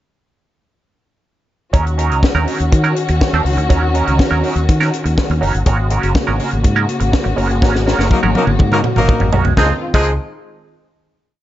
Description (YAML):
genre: disco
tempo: 123 BPM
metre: 4/4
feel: straight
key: unclear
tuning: A4 = 439 Hz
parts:
  - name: clean electric guitar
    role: accompaniment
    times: 1.7-10.1 s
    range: F3 to Bb4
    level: -20 LUFS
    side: right 6 dB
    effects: wah, lush chorus
  - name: warm studio string section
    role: sustained chords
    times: 1.7-9.8 s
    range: Db3 to Gb4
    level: -21 LUFS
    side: left 2 dB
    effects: none
  - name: fingered electric bass with an envelope filter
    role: bass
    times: 1.7-10.2 s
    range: Gb1 to Eb3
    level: -17 LUFS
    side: equal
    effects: none
  - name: tight funk drum kit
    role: drums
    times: 1.7-10.1 s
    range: crash cymbal, hi-hat, kick drum, snare drum, toms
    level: -16 LUFS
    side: equal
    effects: gated reverb
  - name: warm horn section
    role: stabs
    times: 8.1-10.1 s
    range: F3 to Bb4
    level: -19 LUFS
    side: left 2 dB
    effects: none
room: little or no reverb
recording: nothing above 7.7 kHz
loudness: -12 LUFS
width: side -13 dB against mid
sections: 1.7-9.6 groove; 9.6-11.4 final chord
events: drum fill 7.6-9.6; band accent 7.6-9.6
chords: 1.7 Ebm7; 5.7 Ab9sus4; 9.6 Dbmaj9